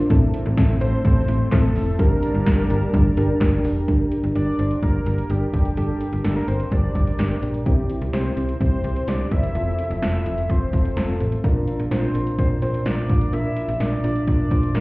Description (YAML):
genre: synth-pop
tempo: 127 BPM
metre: 4/4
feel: straight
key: G dorian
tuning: A4 = 442 Hz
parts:
  - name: soft electric-piano-like synth keys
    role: accompaniment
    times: 0.0-14.8 s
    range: C4 to C5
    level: -25 LUFS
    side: equal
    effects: chorus, phaser, shimmer reverb
  - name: lush unison pad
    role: sustained chords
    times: 0.0-3.9 s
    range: G3 to A5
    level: -30 LUFS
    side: equal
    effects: chorus, shimmer reverb
  - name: slap-like FM bass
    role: bass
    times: 0.0-14.8 s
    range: F1 to C2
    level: -22 LUFS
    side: equal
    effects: none
  - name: punchy analog drum machine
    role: drums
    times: 0.1-14.8 s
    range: handclaps, hi-hat, kick drum, snare drum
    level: -22 LUFS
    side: equal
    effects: none
  - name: fat analog lead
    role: melody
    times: 0.8-14.8 s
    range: G4 to E5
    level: -29 LUFS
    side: equal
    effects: chorus, ping-pong delay, shimmer reverb
room: moderate digital room reverb, RT60 1.2 s, digital ambience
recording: heard muffled through a wall, club reverb, EQ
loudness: -18 LUFS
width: side -22 dB against mid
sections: 0.0-3.9 A section; 3.9-14.8 B section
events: none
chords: 0.1 Am; 2.0 Gmadd9; 3.9 Gm; 7.7 C7; 9.6 Fmaj7; 11.4 Bb